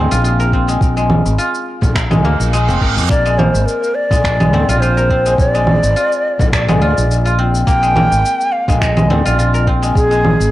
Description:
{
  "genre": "organic downtempo",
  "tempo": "105 BPM",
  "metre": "4/4",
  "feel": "swing 54% on 16ths",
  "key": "Bb mixolydian",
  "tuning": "A4 = 442 Hz",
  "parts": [
    { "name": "guzheng", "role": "arpeggios", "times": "0.0-10.5 s", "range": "Ab3 to Bb4", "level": "-18 LUFS", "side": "left 1 dB", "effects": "cassette tape, tape echo" },
    { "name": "mellow fretless electric bass", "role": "bass", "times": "0.0-10.5 s", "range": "F1 to F2", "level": "-16 LUFS", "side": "equal", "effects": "wide subtle chorus, sidechain pumping" },
    { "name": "electronic cabasa, congas and finger snaps", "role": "drums", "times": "0.1-10.5 s", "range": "none", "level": "-18 LUFS", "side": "right 1 dB", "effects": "cassette tape" },
    { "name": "electronic kick drum", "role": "drums", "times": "0.5-10.1 s", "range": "none", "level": "-16 LUFS", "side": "equal", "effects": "cassette tape" },
    { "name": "frame drum", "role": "percussion", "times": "1.8-9.2 s", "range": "none", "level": "-24 LUFS", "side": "left 1 dB", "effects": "none" },
    { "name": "reverse cymbal", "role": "sound effects", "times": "2.2-3.1 s", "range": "none", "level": "-23 LUFS", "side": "right 7 dB", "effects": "none" },
    { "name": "breathy bright ney", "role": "melody", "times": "3.1-10.5 s", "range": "Ab4 to G5", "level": "-16 LUFS", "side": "equal", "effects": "cassette tape, tape echo" }
  ],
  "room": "light reverb",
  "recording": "home recording on cassette",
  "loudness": "-11 LUFS",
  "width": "side -15 dB against mid",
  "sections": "0.0-10.5 A section",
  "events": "reverse cymbal 2.2-3.1",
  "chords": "0.0 Bb7"
}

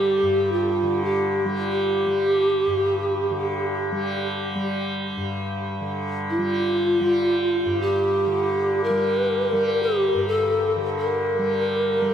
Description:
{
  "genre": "world meditative, free-time meditation music",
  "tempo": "free time",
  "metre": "none",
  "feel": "none",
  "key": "G minor",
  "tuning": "A4 = 439 Hz",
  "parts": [
    { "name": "mellow hollow polished pan flute", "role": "melody", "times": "0.0-12.1 s", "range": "F4 to Bb4", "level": "-21 LUFS", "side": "equal", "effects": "shimmer reverb, tape echo" },
    { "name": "tanpura", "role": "drone", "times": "0.0-12.1 s", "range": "G2 to G3", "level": "-26 LUFS", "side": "equal", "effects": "stereo widening" }
  ],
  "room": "wet huge ambient reverb, RT60 9.0 s",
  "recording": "none",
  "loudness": "-20 LUFS",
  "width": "side -9 dB against mid",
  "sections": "0.0-12.1 A section",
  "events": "none",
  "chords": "none"
}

